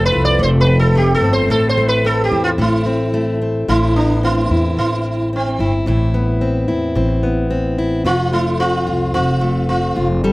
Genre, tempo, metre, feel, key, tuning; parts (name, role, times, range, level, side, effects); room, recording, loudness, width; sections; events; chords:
acoustic pop; 110 BPM; 4/4; straight; A minor; A4 = 442 Hz
sitar; melody; 0.0-10.1 s; C4 to D5; -18 LUFS; right 1 dB; slapback echo
fingerpicked plugged-in steel-string acoustic guitar; accompaniment; 0.0-10.3 s; F2 to A4; -18 LUFS; left 1 dB; slapback echo
upright bass; bass; 0.0-10.3 s; F1 to E2; -18 LUFS; equal
little or no reverb; recorded outdoors, with no room sound; -14 LUFS; side -20 dB against mid
0.0-3.7 A section; 3.7-10.3 B section
0.0 F; 1.5 Am; 3.7 Amadd9; 8.0 F